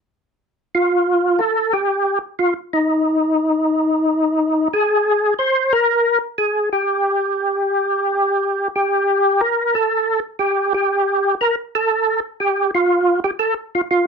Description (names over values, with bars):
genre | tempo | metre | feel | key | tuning
jazz | 120 BPM | 4/4 | swing 68% on 8ths | unclear | A4 = 444 Hz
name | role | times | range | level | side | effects
percussive tonewheel organ | solo | 0.7-14.1 s | Eb4 to C5 | -16 LUFS | equal | slow rotary speaker, overdrive, chorus vibrato
room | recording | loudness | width
moderate club reverb, RT60 0.5 s | dark, warm production | -16 LUFS | side -5 dB against mid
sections
0.9-14.1 A section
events
none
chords
none